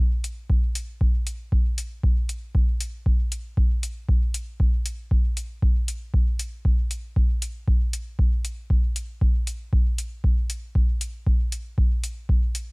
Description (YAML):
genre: techno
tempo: 117 BPM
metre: 4/4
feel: straight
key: none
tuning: none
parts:
  - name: electronic hi-hat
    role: drums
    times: 0.2-12.7 s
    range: none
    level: -33 LUFS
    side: left 2 dB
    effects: none
  - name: electronic kick drum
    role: drums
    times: 0.5-12.4 s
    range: none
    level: -21 LUFS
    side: equal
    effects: none
room: little or no reverb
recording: dry, gritty hardware recording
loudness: -22 LUFS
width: side -37 dB against mid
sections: 0.0-12.7 A section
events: none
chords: none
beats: 0.50 1.01 1.52 | 2.04 2.55 3.06 3.57 | 4.09 4.60 5.11 5.62 | 6.14 6.65 7.16 7.68 | 8.19 8.70 9.21 9.73 | 10.24 10.75 11.27 11.78 | 12.29